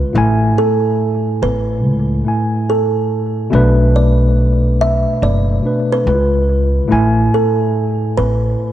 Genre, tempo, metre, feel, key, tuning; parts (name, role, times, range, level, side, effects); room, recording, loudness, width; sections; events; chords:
lo-fi hip hop; 71 BPM; 4/4; swing 65% on 16ths; A4 = 440 Hz
kalimba; melody; 0.0-8.7 s; A4 to E5; -20 LUFS; right 4 dB
mellow tine electric piano; accompaniment; 0.0-8.7 s; A2 to G#5; -16 LUFS; left 1 dB; medium stereo tremolo
upright bass; bass; 0.0-8.5 s; F#1 to C#2; -15 LUFS; equal
light reverb, studio ambience; worn, warbling old tape, cassette tape, warbly pitch drift; -12 LUFS; side -12 dB against mid
0.0-8.7 A section
0.1 Amaj7sus2; 3.5 Bm7; 6.1 C#7; 6.9 Amaj7sus2